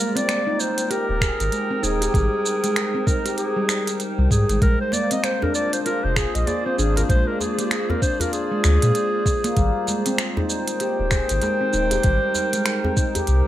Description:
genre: organic downtempo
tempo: 97 BPM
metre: 4/4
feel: swing 60% on 16ths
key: unclear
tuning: A4 = 440 Hz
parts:
  - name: mellow clarinet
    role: melody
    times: 0.0-13.5 s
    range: G4 to Eb5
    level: -24 LUFS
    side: equal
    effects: digital delay
  - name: warbly tape-like pad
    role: sustained chords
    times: 0.0-13.5 s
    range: Bb3 to G5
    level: -29 LUFS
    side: equal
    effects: chorus, built-in reverb, sidechain pumping
  - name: handpan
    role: arpeggios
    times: 0.0-13.4 s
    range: G3 to Ab4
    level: -26 LUFS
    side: equal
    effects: digital delay
  - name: organic electronic drum kit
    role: drums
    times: 0.2-13.4 s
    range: finger snaps, hi-hat, shaker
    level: -26 LUFS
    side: right 2 dB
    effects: studio reverb, gated reverb
  - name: warm sub bass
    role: bass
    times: 1.1-13.4 s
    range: Eb1 to Bb2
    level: -20 LUFS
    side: equal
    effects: none
  - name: electronic kick drum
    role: drums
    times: 1.2-13.1 s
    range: none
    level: -21 LUFS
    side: equal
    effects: studio reverb
  - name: djembe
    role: percussion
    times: 4.9-13.3 s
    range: none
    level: -29 LUFS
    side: equal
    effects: none
room: light reverb, studio reverb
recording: bright 1980s-style digital production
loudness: -19 LUFS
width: side -13 dB against mid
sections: 0.0-13.5 A section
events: none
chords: 0.0 Abmaj7; 4.6 Bb9; 9.6 Abmaj7

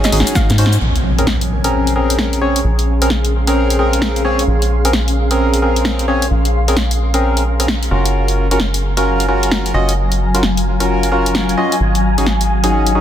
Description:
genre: UK garage, two-step garage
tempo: 131 BPM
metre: 4/4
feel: swing 63% on 16ths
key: Bb minor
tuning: A4 = 441 Hz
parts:
  - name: hollow square pluck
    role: melody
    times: 0.0-0.7 s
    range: Eb5 to F5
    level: -27 LUFS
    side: right 4 dB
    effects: chorus, tape echo
  - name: percussive organ stab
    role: stabs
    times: 0.0-13.0 s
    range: C4 to Eb5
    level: -18 LUFS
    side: equal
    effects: lush chorus, tape echo
  - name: house drum kit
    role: drums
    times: 0.0-12.9 s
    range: hi-hat, shaker, snare drum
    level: -20 LUFS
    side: left 1 dB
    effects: none
  - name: granular cloud pad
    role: texture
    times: 0.0-13.0 s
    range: Gb3 to C6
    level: -23 LUFS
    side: left 2 dB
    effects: built-in reverb, sidechain pumping
  - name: rubbery square bass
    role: bass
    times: 0.1-13.0 s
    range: Gb1 to Ab2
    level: -16 LUFS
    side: equal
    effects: none
  - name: electronic kick drum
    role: drums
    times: 0.4-0.5 s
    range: none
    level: -18 LUFS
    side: equal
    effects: none
  - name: soft string machine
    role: sustained chords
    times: 2.8-13.0 s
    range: F5 to Ab5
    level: -26 LUFS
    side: left 1 dB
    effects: phaser, ensemble chorus, vintage 12-bit sampler grit, sidechain pumping
  - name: impact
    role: sound effects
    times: 0.8-2.6 s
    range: none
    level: -23 LUFS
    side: equal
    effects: none
room: light reverb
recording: dense, heavily limited modern master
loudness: -13 LUFS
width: side -10 dB against mid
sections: 0.8-13.0 A section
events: drum fill 0.0-0.8; band accent 0.7; impact 0.8-2.6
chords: 0.0 Ab7sus4; 0.8 Bbm9; 7.9 Gbmaj7; 11.8 Ab7sus4

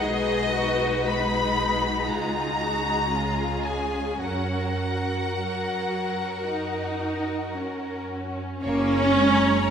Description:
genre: classical, slow romantic movement for string orchestra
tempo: 51-60 BPM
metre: 4/4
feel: rubato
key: F# major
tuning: A4 = 443 Hz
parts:
  - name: rich studio violin section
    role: melody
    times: 0.0-9.7 s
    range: C#5 to B5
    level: -28 LUFS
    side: left 3 dB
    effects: none
  - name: rich studio violin section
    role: second line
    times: 0.0-9.7 s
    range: E#4 to A#5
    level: -31 LUFS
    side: left 3 dB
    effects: none
  - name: rich studio viola section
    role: accompaniment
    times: 0.0-9.7 s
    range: F#3 to D#4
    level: -27 LUFS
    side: equal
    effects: none
  - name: clear studio double bass section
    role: bass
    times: 0.0-9.6 s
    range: F#1 to F#2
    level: -32 LUFS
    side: right 2 dB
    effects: none
  - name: rich studio cello section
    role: bass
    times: 0.0-9.7 s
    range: G#3 to A#4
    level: -31 LUFS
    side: right 2 dB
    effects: none
room: wet scoring stage reverb, RT60 1.9 s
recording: none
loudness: -23 LUFS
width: side -8 dB against mid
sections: 0.0-8.6 A section; 8.6-9.7 A section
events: none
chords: 0.0 G#m7/B; 2.1 C#; 4.2 F#

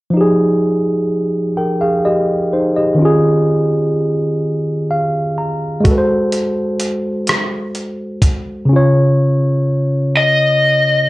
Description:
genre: slow six-eight R&B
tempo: 42 BPM (dotted quarters)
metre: 6/8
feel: straight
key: F minor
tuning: A4 = 437 Hz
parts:
  - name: barky tine electric piano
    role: accompaniment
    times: 0.1-11.1 s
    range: Db3 to Bb5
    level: -14 LUFS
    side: equal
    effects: overdrive, plate reverb
  - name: dusty soul sampler-style drum kit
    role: drums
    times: 5.8-8.4 s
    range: hi-hat, kick drum, rim click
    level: -15 LUFS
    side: equal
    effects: none
  - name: lead guitar through a small cranked amp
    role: melody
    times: 10.2-11.1 s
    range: Eb5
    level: -11 LUFS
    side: left 2 dB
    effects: overdrive, plate reverb
room: moderate studio reverb, RT60 0.8 s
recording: worn, warbling old tape, cassette tape, warbly pitch drift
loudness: -13 LUFS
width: side -18 dB against mid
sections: 0.1-11.1 A section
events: tine electric piano fill 4.4-5.9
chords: 0.1 Fm9; 3.0 Eb9sus4; 5.9 Ab7b9; 8.7 Db

